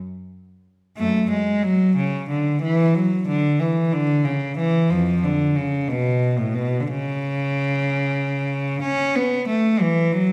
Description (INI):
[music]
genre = classical, baroque-style suite movement for unaccompanied cello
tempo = 61 BPM (dotted quarters)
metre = 12/8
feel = rubato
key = unclear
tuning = A4 = 441 Hz
[part]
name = rich cello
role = solo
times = 1.0-10.3 s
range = E#2 to C#4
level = -21 LUFS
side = equal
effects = none
[sound]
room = wet recital hall reverb, RT60 1.4 s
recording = recorded in a church or concert hall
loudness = -21 LUFS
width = mono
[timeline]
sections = 1.0-10.3 A section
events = none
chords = none